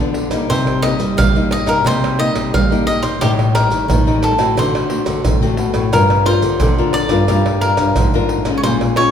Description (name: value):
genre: samba and choro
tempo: 88 BPM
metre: 4/4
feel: straight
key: unclear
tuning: A4 = 442 Hz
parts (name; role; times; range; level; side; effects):
- cavaquinho; melody; 0.0-9.1 s; G4 to F5; -19 LUFS; left 1 dB; none
- nylon-string guitar; accompaniment; 0.0-9.1 s; G2 to Bb4; -19 LUFS; left 4 dB; none
- nylon-string guitar; bass; 0.0-9.1 s; G2 to G3; -19 LUFS; equal; none
- maracas, pandeiro, surdo and tamborim; percussion; 0.0-9.1 s; none; -18 LUFS; right 1 dB; none
room: wet recital hall reverb, RT60 1.9 s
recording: recorded in a church or concert hall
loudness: -13 LUFS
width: side -8 dB against mid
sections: 0.0-9.1 A section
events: none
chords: 0.5 Cm7; 3.2 Am7b5; 4.6 D7; 5.9 Gm7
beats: | 0.50 1.18 1.85 2.54 | 3.21 3.89 4.57 5.25 | 5.93 6.61 7.29 7.96 | 8.64